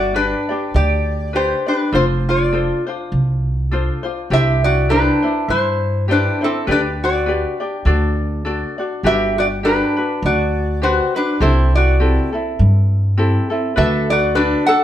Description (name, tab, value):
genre	Hawaiian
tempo	101 BPM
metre	4/4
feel	swing 56% on 8ths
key	G major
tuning	A4 = 441 Hz
part	metal-body resonator slide guitar	melody	0.0-14.8 s	C4 to F#5	-17 LUFS	equal	none
part	ukulele	accompaniment	0.0-14.8 s	C4 to D5	-23 LUFS	left 2 dB	none
part	upright bass	bass	0.0-14.5 s	F1 to G2	-18 LUFS	equal	none
room	wet stone room reverb, RT60 1.2 s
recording	band playing live in one room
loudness	-15 LUFS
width	side -11 dB against mid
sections	0.0-14.8 A section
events	none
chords	0.0 G; 1.9 F6; 4.3 Cadd9; 6.7 G/D; 7.9 D; 9.0 Gmaj7; 11.4 C6; 13.8 D6